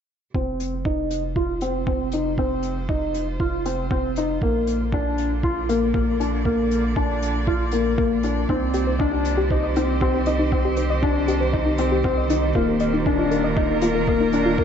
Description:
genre	piano and strings electronica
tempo	118 BPM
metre	4/4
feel	straight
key	F dorian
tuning	A4 = 436 Hz
part	round analog bass	bass	0.3-14.6 s	Eb1 to C2	-27 LUFS	right 1 dB	sidechain pumping
part	electronic kick drum	drums	0.3-14.6 s	none	-26 LUFS	right 1 dB	none
part	warm string quartet	sustained chords	0.4-14.6 s	C3 to D5	-28 LUFS	right 3 dB	sidechain pumping
part	felt-muted upright piano	riff	0.4-14.6 s	Bb3 to F4	-23 LUFS	left 2 dB	analog chorus, low-pass filter, ping-pong delay
part	hi-hat	drums	0.6-14.4 s	none	-39 LUFS	left 4 dB	none
part	soft round pluck	arpeggios	8.5-14.6 s	Eb4 to Eb5	-25 LUFS	left 2 dB	chorus, sidechain pumping, ping-pong delay
room	moderate plate reverb, RT60 1.4 s, small room ambience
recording	dreamy mix soaked in reverb, nothing above 7.8 kHz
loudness	-20 LUFS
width	side -8 dB against mid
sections	0.4-14.6 A section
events	fade-in on string quartet 0.4-14.6; filter sweep on felt piano 0.4-14.6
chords	0.4 Fm; 4.4 Bb; 8.5 Cm; 12.6 Ebsus2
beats	| 0.35 0.86 1.37 1.88 | 2.39 2.90 3.40 3.91 | 4.42 4.93 5.44 5.95 | 6.46 6.96 7.47 7.98 | 8.49 9.00 9.51 10.02 | 10.52 11.03 11.54 12.05 | 12.56 13.07 13.57 14.08 | 14.59

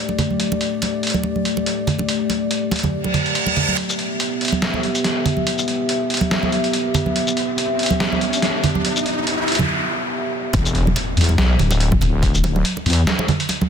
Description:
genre	deep dubstep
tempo	142 BPM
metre	4/4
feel	swing 55% on 16ths, half-time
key	E minor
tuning	A4 = 441 Hz
part	dark analog pad	sustained chords	0.0-10.5 s	A3 to E5	-23 LUFS	left 1 dB	chorus
part	congas	percussion	0.1-13.7 s	none	-24 LUFS	right 3 dB	dub echo
part	trip hop sampler-style drum kit	drums	0.2-13.6 s	hi-hat, shaker, snare drum	-23 LUFS	equal	none
part	reverse cymbal, riser, noise sweep and impact	sound effects	3.0-12.2 s	none	-25 LUFS	equal	none
part	wobble bass	bass	10.5-13.1 s	D1 to E2	-17 LUFS	left 1 dB	chorus
part	electronic kick drum	drums	10.5-12.3 s	none	-21 LUFS	left 1 dB	overdrive
room	light reverb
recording	dense, heavily limited modern master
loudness	-17 LUFS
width	side -7 dB against mid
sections	0.0-3.8 A section; 3.8-10.5 B section; 10.5-13.7 C section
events	reverse cymbal 3.0-3.8; build-up 3.8-10.5; riser 3.8-9.7; noise sweep 8.8-10.5; break 9.7-10.5; drop 10.5-13.7; impact 10.5-12.2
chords	0.0 Dsus4; 3.8 Em; 10.5 E5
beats	| 0.40 0.82 1.24 1.66 | 2.09 2.51 2.93 3.35 | 3.78 4.20 4.62 5.04 | 5.47 5.89 6.31 6.73 | 7.16 7.58 8.00 8.42 | 8.85 9.27 9.69 10.12 | 10.54 10.96 11.38 11.80 | 12.23 12.65 13.07 13.49

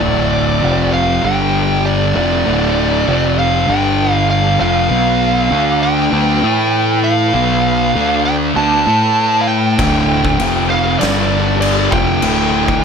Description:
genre	stoner and doom metal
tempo	98 BPM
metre	4/4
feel	straight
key	D dorian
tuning	A4 = 440 Hz
part	fuzz lead guitar	melody	0.0-12.8 s	D5 to A5	-17 LUFS	right 2 dB	distortion, ping-pong delay
part	tonewheel organ	sustained chords	0.0-12.8 s	D3 to F5	-28 LUFS	equal	none
part	fuzz guitar	riff	0.0-12.8 s	D2 to A4	-21 LUFS	equal	distortion
part	thick fuzz guitar	riff	0.0-12.8 s	D2 to A4	-18 LUFS	left 10 dB	distortion
part	thick fuzz guitar	riff	0.0-12.8 s	D2 to A4	-19 LUFS	right 10 dB	distortion
part	growling fingered electric bass	bass	0.0-12.8 s	D1 to A2	-21 LUFS	equal	overdrive
part	oversized low-tuned drum kit	drums	9.8-12.8 s	crash cymbal, kick drum, snare drum	-20 LUFS	left 1 dB	none
room	light reverb, small room reverb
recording	none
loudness	-12 LUFS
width	side -6 dB against mid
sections	0.0-12.8 A section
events	none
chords	0.0 D5; 0.6 F5; 1.2 G5; 2.2 Dm; 3.1 F5; 3.7 G5; 4.6 Dm; 4.9 B5; 5.5 D5; 6.1 B5; 6.4 A5; 7.3 B5; 8.0 D5; 8.6 B5; 8.9 A5; 9.8 D5; 10.4 F5; 11.0 G5; 11.9 Dm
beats	| 0.01 0.63 1.24 1.85 | 2.46 3.07 3.68 4.29 | 4.90 5.51 6.12 6.73 | 7.34 7.95 8.56 9.17 | 9.78 10.39 11.00 11.61 | 12.22 12.83

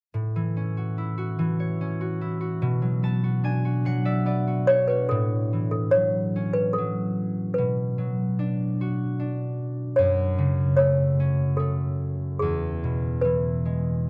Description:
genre	children's music, lullaby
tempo	73 BPM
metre	3/4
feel	rubato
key	A major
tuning	A4 = 440 Hz
part	concert harp	accompaniment	0.1-14.1 s	E2 to A5	-26 LUFS	equal	none
part	toy piano	melody	4.7-14.1 s	G#4 to C#5	-27 LUFS	equal	none
room	light reverb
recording	dry, close 1970s-style studio recording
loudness	-25 LUFS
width	mono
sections	0.1-5.1 A section; 5.1-14.1 B section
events	harp fill 2.6-5.1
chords	0.1 A6; 2.6 Bm; 5.1 A6; 7.6 Bm; 10.0 F#m; 12.4 E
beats	| 0.14 0.98 1.81 | 2.62 3.44 4.26 | 5.10 5.94 6.77 | 7.58 8.39 9.19 | 9.98 10.79 11.61 | 12.43 13.26 14.09

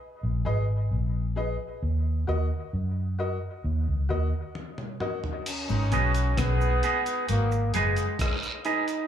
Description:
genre	dub reggae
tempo	66 BPM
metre	4/4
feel	straight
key	G# minor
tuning	A4 = 443 Hz
part	vintage muted fingered electric bass	bass	0.2-8.0 s	F#1 to F#2	-25 LUFS	equal	none
part	clear upright piano	stabs	0.4-5.2 s	F#4 to D#5	-35 LUFS	left 2 dB	dub echo
part	dusty soul sampler-style drum kit	drums	4.6-9.1 s	crash cymbal, hi-hat, kick drum, rim click, toms	-33 LUFS	equal	none
part	warm trombone	melody	5.5-9.1 s	G#3 to D#4	-30 LUFS	equal	dub echo
part	cabasa and guiro	percussion	5.5-9.1 s	none	-39 LUFS	right 5 dB	dub echo
part	mellow horn section	second line	5.7-8.1 s	D#3 to G#4	-33 LUFS	left 4 dB	dub echo
part	mellow electric guitar	riff	5.7-7.9 s	F#2 to B2	-33 LUFS	left 11 dB	dub echo
part	twangy electric guitar	accompaniment	5.9-8.8 s	G#4 to D#5	-30 LUFS	right 8 dB	dub echo
room	light reverb, small room ambience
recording	small room reverb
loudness	-25 LUFS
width	side -9 dB against mid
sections	0.0-5.5 A section; 5.5-9.1 B section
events	break 0.0-5.5; drum fill 4.6-5.5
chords	0.0 G#m; 1.8 D#m; 5.5 G#m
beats	0.01 0.92 | 1.83 2.74 3.65 4.56 | 5.47 6.38 7.29 8.20

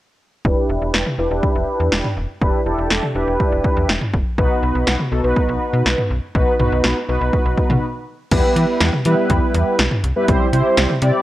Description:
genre	synth-pop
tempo	122 BPM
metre	4/4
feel	straight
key	E minor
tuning	A4 = 440 Hz
part	mellow synth brass	accompaniment	0.4-11.2 s	G3 to D5	-19 LUFS	equal	chorus, low-pass filter
part	slap-like FM bass	bass	0.4-11.1 s	E1 to E3	-20 LUFS	equal	none
part	punchy analog drum machine	drums	0.4-11.1 s	crash cymbal, hi-hat, kick drum, snare drum, toms	-19 LUFS	equal	none
room	light reverb, digital ambience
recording	worn, warbling old tape, cassette tape, warbly pitch drift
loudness	-15 LUFS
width	side -15 dB against mid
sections	0.4-8.3 A section; 8.3-11.2 B section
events	filter sweep on analog polysynth 0.4-8.3; break 7.8-8.3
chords	0.4 Em7; 4.4 B; 8.3 Em; 10.3 C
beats	| 0.45 0.94 1.43 1.92 | 2.42 2.91 3.40 3.89 | 4.38 4.87 5.37 5.86 | 6.35 6.84 7.33 7.83 | 8.32 8.81 9.30 9.79 | 10.28 10.78

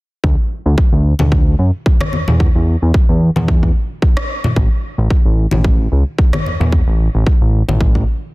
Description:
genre	nu-disco, nu disco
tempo	111 BPM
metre	4/4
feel	swing 55% on 16ths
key	A major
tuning	A4 = 441 Hz
part	fat analog bass	bass	0.2-8.0 s	A1 to F#2	-13 LUFS	equal	none
part	electronic kick drum	drums	0.2-8.1 s	none	-14 LUFS	equal	overdrive
part	congas	percussion	1.2-7.8 s	none	-21 LUFS	left 1 dB	none
part	electronic rim click	drums	2.0-6.4 s	none	-25 LUFS	equal	overdrive
room	little or no reverb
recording	dense, heavily limited modern master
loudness	-12 LUFS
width	side -22 dB against mid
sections	0.2-8.3 A section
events	none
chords	none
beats	| 0.24 0.78 1.32 1.86 | 2.40 2.94 3.49 4.03 | 4.57 5.11 5.65 6.19 | 6.73 7.27 7.81

